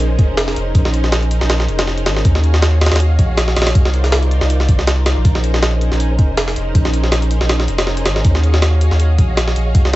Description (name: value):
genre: drum and bass, jungle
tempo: 160 BPM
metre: 4/4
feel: swing 54% on 16ths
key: Bb minor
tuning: A4 = 441 Hz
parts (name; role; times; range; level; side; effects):
- soft string machine; sustained chords; 0.0-10.0 s; Db4 to F5; -22 LUFS; equal; ensemble chorus, vintage 12-bit sampler grit
- saturated sub bass; bass; 0.0-10.0 s; F1 to Eb2; -15 LUFS; equal; none
- jungle sampler-style drum kit; drums; 0.0-10.0 s; hi-hat, kick drum, snare drum; -16 LUFS; equal; studio reverb
- sub drop; sound effects; 0.0-0.7 s; none; barely audible; none; none
room: little or no reverb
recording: vinyl crackle, nothing above 8.0 kHz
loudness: -12 LUFS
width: side -17 dB against mid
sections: 0.0-10.0 A section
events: impact 0.0-0.7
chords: 0.0 Bbm11; 2.2 Ebm11; 3.7 Cm11; 5.2 Bbm11; 8.2 Ebm11